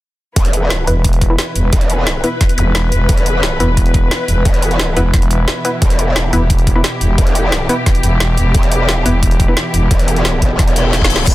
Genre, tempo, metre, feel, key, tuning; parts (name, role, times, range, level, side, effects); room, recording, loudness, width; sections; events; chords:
dark technical drum and bass; 176 BPM; 4/4; straight; E minor; A4 = 441 Hz
muted studio string section; sustained chords; 0.4-11.3 s; B2 to B4; -20 LUFS; left 1 dB; sidechain pumping
growl bass; bass; 0.4-11.3 s; E1; -16 LUFS; equal; chorus, tube saturation, sidechain pumping
drum and bass drum kit; drums; 0.4-11.3 s; crash cymbal, hi-hat, snare drum; -20 LUFS; equal; overdrive
electronic kick drum; drums; 0.4-11.3 s; -13 LUFS; equal
filtered dub chord stab; stabs; 0.9-9.5 s; B3 to B4; -21 LUFS; left 1 dB; chorus, digital delay
growling FM bass; bass; 0.9-9.9 s; E1; -14 LUFS; equal
zap and reverse cymbal; sound effects; 2.6-2.7, 10.7-11.3 s; -22 LUFS; left 4 dB
little or no reverb; dense, heavily limited modern master; -11 LUFS; side -17 dB against mid
0.4-11.3 A section
reverse cymbal 10.7-11.3; drum fill 10.9-11.3
0.4 E5